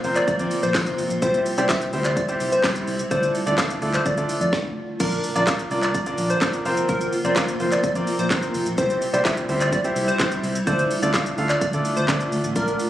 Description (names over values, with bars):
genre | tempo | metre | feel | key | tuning
dance-pop | 127 BPM | 4/4 | straight | unclear | A4 = 438 Hz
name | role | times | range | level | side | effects
clear concert grand piano | accompaniment | 0.0-12.8 s | G3 to F5 | -24 LUFS | equal | sidechain pumping
granular cloud pad | sustained chords | 0.0-12.9 s | C3 to F4 | -30 LUFS | equal | built-in reverb, sidechain pumping
vintage muted fingered electric bass | bass | 0.0-12.7 s | F1 to D3 | -28 LUFS | equal | sidechain pumping
house drum kit | drums | 0.0-12.9 s | crash cymbal, handclaps, hi-hat, kick drum, shaker, snare drum | -25 LUFS | equal | none
plucky unison lead | melody | 0.2-12.7 s | Bb4 to F5 | -25 LUFS | equal | sidechain pumping
tambourine | percussion | 0.7-3.7 s | none | -42 LUFS | left 3 dB | none
room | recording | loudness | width
light reverb, digital ambience | recorded on a phone in the room, club reverb, compression | -19 LUFS | side -12 dB against mid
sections
0.0-5.0 A section; 5.0-12.9 A section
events
drop 0.0-5.0, 5.0-12.9; stop 4.5-5.0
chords
0.0 Fsus4; 1.2 C; 3.1 Dm; 5.0 Bb; 6.7 Fsus4; 8.8 C; 10.7 Dm